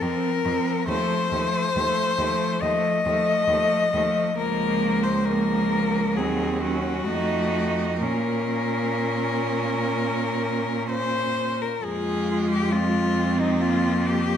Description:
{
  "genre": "classical, lyrical piece for cello ensemble",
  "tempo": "60-72 BPM",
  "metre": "4/4",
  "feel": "rubato",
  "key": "Bb minor",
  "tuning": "A4 = 440 Hz",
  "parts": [
    { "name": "rich cello", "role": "melody", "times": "0.0-14.4 s", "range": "Eb4 to Eb5", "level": "-25 LUFS", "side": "left 4 dB", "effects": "none" },
    { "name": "rich cello", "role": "second line", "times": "0.0-14.4 s", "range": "A3 to F4", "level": "-28 LUFS", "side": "right 6 dB", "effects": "none" },
    { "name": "rich cello", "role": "accompaniment", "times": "0.0-14.4 s", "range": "F3 to Bb3", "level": "-28 LUFS", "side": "left 2 dB", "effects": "none" },
    { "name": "clear cello", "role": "bass", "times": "0.0-14.4 s", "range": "Db2 to Bb2", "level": "-28 LUFS", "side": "right 2 dB", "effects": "none" }
  ],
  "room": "moderate scoring stage reverb, RT60 1.5 s",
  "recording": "none",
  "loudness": "-21 LUFS",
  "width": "side -9 dB against mid",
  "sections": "0.0-11.8 A section; 11.8-14.4 B section",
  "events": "none",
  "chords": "0.0 F5; 0.9 F7/Eb; 4.4 Bbm/Db; 6.2 Cdim/Eb; 7.1 F7b9; 8.0 Bbm; 11.8 Fm",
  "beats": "0.03 | 0.88 1.76 2.62 3.49 | 4.38 5.26 6.16 7.08 | 8.01 8.96 9.93 10.90 | 11.84 12.73 13.61"
}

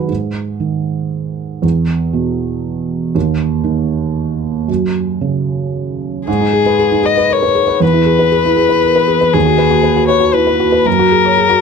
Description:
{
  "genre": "neoclassical piano and strings",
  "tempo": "118 BPM",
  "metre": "3/4",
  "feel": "rubato",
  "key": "G# minor",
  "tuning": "A4 = 441 Hz",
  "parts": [
    { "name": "felt-muted upright piano", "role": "accompaniment", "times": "0.0-11.6 s", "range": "D#2 to C#5", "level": "-14 LUFS", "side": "right 4 dB", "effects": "none" },
    { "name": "muted violin", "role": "melody", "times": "6.3-11.6 s", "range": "G#4 to D#5", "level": "-12 LUFS", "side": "left 10 dB", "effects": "none" }
  ],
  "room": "light reverb",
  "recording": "close, detailed microphones",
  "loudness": "-12 LUFS",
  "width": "side -5 dB against mid",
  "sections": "0.1-6.3 A section; 6.3-11.6 B section",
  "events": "none",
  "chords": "0.1 G#5; 1.6 E5; 3.1 N.C.; 4.7 F#5; 6.3 G#m; 7.8 E; 9.3 B/D#; 10.9 F#add9",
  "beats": "| 0.09 0.60 1.11 | 1.63 2.14 2.65 | 3.15 3.65 4.16 | 4.68 5.21 5.74 | 6.27 6.79 7.30 | 7.82 8.33 8.84 | 9.35 9.85 10.36 | 10.87 11.38"
}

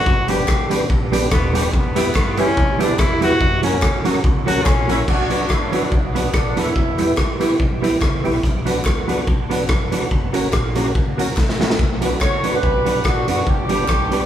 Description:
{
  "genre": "ska",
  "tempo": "143 BPM",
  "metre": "4/4",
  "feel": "swing 55% on 8ths",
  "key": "B harmonic minor",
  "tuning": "A4 = 440 Hz",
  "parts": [
    { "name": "brilliant trombone", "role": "melody", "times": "0.0-5.1 s", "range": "G3 to G4", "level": "-22 LUFS", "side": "left 2 dB", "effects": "none" },
    { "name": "upright bass", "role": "bass", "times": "0.1-14.2 s", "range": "D#1 to G2", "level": "-27 LUFS", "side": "equal", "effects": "none" },
    { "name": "raw garage drum kit", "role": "drums", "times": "0.1-14.2 s", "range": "crash cymbal, hi-hat, kick drum, rim click, snare drum", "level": "-19 LUFS", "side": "equal", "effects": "dub echo" },
    { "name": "hollow-body jazz guitar", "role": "accompaniment", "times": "0.3-14.3 s", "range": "F#3 to G4", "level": "-23 LUFS", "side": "right 4 dB", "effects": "dub echo" },
    { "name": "percussive tonewheel organ", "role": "stabs", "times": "0.3-14.3 s", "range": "A#3 to B4", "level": "-24 LUFS", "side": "left 1 dB", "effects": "chorus vibrato, fast rotary speaker" },
    { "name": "group handclap", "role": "percussion", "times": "0.5-14.0 s", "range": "none", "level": "-35 LUFS", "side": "left 3 dB", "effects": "none" },
    { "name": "mellow horn section", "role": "melody", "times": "4.9-7.2, 12.2-14.3 s", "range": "F#3 to C#5", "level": "-22 LUFS", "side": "right 1 dB", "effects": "none" }
  ],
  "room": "wet large studio reverb, RT60 1.1 s",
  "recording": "band playing live in one room",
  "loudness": "-16 LUFS",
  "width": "side -10 dB against mid",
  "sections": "0.0-5.1 A section; 5.1-14.3 B section",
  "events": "trombone solo 0.0-5.1; drum fill 11.4-11.8",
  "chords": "0.1 G; 1.7 Em; 3.4 F#; 5.1 Bm; 6.8 Em; 8.4 Bm; 10.1 F#; 11.8 Bm; 13.5 G",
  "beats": "| 0.06 0.48 0.90 1.32 | 1.73 2.15 2.57 2.99 | 3.41 3.83 4.25 4.66 | 5.08 5.50 5.92 6.34 | 6.76 7.18 7.60 8.02 | 8.44 8.86 9.28 9.69 | 10.11 10.53 10.95 11.37 | 11.79 12.21 12.63 13.05 | 13.47 13.89"
}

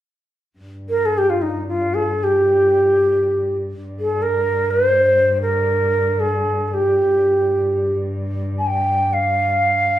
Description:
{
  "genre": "persian",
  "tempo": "free time",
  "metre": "none",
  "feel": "none",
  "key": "G dastgah shur",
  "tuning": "A4 = 440 Hz",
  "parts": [
    { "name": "muted cello", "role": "drone", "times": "0.6-10.0 s", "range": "G2", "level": "-25 LUFS", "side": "equal", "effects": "none" },
    { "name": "breathy ney", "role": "melody", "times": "0.9-10.0 s", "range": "Eb4 to Ab5+45c", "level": "-16 LUFS", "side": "equal", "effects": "none" }
  ],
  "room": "wet large studio reverb, RT60 0.8 s",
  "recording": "band playing live in one room",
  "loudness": "-16 LUFS",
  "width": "side -13 dB against mid",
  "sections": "0.6-10.0 A section",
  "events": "none",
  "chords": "none",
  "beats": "free time"
}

